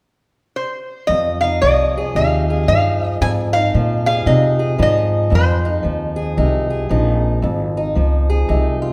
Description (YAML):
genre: acoustic country blues, solo or duo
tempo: 114 BPM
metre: 4/4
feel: swing 62% on 8ths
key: F minor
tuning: A4 = 437 Hz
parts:
  - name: lap resonator guitar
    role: melody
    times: 0.6-5.8 s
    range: C5 to Ab5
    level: -21 LUFS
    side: equal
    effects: none
  - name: fingerpicked steel-string acoustic guitar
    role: accompaniment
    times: 1.1-8.9 s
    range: F2 to Ab4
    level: -22 LUFS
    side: equal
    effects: none
  - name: upright bass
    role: bass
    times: 1.1-8.9 s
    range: Ab1 to C3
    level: -20 LUFS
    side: equal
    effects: none
room: moderate recital hall reverb, RT60 1.5 s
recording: recorded in a church or concert hall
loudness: -17 LUFS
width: mono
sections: 0.0-1.1 A section; 1.1-8.9 B section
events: none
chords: 0.0 N.C.; 1.1 Fm7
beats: 0.04 0.56 | 1.09 1.62 2.15 2.68 | 3.20 3.73 4.26 4.79 | 5.32 5.84 6.37 6.90 | 7.43 7.96 8.49